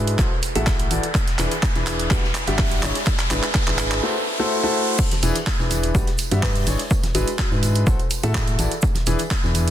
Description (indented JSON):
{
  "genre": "piano house",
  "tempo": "125 BPM",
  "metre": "4/4",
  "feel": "straight",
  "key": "E mixolydian",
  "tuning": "A4 = 440 Hz",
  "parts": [
    { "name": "clear concert grand piano", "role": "riff", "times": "0.0-9.7 s", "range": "E3 to E5", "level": "-25 LUFS", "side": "left 1 dB", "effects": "sidechain pumping, low-pass filter, tape echo" },
    { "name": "organ-like FM bass", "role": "bass", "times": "0.0-9.7 s", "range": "E1 to A2", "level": "-23 LUFS", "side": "equal", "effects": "sidechain pumping" },
    { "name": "riser and swell", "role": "sound effects", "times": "0.0-5.0 s", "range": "none", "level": "-28 LUFS", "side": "equal", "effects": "none" },
    { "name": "house drum kit", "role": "drums", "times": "0.1-9.7 s", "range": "crash cymbal, handclaps, hi-hat", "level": "-26 LUFS", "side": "right 2 dB", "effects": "soft clipping on snare" },
    { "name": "electronic kick drum", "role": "drums", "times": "0.2-9.4 s", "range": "none", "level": "-22 LUFS", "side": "equal", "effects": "overdrive" },
    { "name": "tight funk drum kit", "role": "drums", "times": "0.2-9.7 s", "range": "hi-hat, shaker, snare drum", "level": "-37 LUFS", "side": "left 1 dB", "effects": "none" },
    { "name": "kalimba", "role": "melody", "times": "0.6-0.9, 6.4-8.6 s", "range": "F#4 to B4", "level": "-32 LUFS", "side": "equal", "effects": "tape echo" },
    { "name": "tambourine and congas", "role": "percussion", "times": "5.0-9.7 s", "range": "none", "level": "-34 LUFS", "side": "right 3 dB", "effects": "none" }
  ],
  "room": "light reverb, studio ambience",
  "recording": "dense, heavily limited modern master",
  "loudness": "-18 LUFS",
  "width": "side -11 dB against mid",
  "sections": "0.0-5.0 A section; 5.0-9.7 B section",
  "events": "build-up 0.0-5.0; drum fill 0.0-4.0; riser 0.0-5.0; swell 4.0-5.0; drop 5.0-9.7",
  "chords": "0.2 Am6; 1.1 E7; 2.1 Gmaj7; 2.8 E7/G#; 4.0 Am6; 5.0 E7; 5.9 Gmaj7; 6.7 E7/G#; 7.9 Am6; 8.8 E7"
}